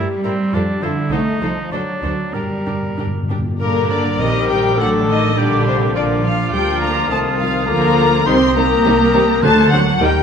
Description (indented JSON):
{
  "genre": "quick classical-period movement for symphony orchestra",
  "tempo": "102 BPM",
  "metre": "2/4",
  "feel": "rubato",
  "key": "G minor",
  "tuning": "A4 = 440 Hz",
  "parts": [
    { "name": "muted chamber violin section", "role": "melody", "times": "0.0-10.2 s", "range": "Bb4 to C6", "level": "-21 LUFS", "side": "left 4 dB", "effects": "none" },
    { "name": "muted studio violin section", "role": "second line", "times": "0.0-10.1 s", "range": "Bb3 to Bb4", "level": "-26 LUFS", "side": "left 4 dB", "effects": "none" },
    { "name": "warm cor anglais", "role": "second line", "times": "0.0-10.2 s", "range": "C4 to C5", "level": "-25 LUFS", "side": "right 3 dB", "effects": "none" },
    { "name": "muted studio viola section", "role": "accompaniment", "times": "0.0-10.1 s", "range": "D3 to F4", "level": "-22 LUFS", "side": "left 1 dB", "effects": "none" },
    { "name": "mellow French horn section", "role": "sustained chords", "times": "0.0-10.2 s", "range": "D3 to C5", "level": "-22 LUFS", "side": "left 4 dB", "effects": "none" },
    { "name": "muted studio cello section", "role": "bass", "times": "0.0-10.2 s", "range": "Bb2 to C4", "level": "-21 LUFS", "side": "right 3 dB", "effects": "none" },
    { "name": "muted studio double bass section", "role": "bass", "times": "0.0-10.2 s", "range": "A1 to G2", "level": "-22 LUFS", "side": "right 3 dB", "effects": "none" },
    { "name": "timpani", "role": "percussion", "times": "2.3-3.5, 9.4-10.0 s", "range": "G2 to D3", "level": "-24 LUFS", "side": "left 1 dB", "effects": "none" },
    { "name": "silver concert flute", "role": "second line", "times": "3.6-10.2 s", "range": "D6 to G6", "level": "-25 LUFS", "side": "left 2 dB", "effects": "none" }
  ],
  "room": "moderate concert hall reverb, RT60 2.1 s",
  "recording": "nothing above 10.8 kHz",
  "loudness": "-14 LUFS",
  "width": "side -7 dB against mid",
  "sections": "0.0-3.6 A section; 3.6-10.2 B section",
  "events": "timpani fill 2.3-3.6",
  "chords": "0.0 Edim/G; 0.5 F; 1.1 Adim; 1.7 D; 2.3 Gm; 4.8 D/A; 5.4 Gm/Bb; 6.0 Bb; 7.1 F7/C; 7.7 Bb/D; 8.3 Cm; 9.4 D7",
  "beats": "0.54 | 1.12 1.72 | 2.34 2.98 | 3.60 4.20 | 4.79 5.37 | 5.95 6.53 | 7.10 7.68 | 8.27 8.85 | 9.43 10.01"
}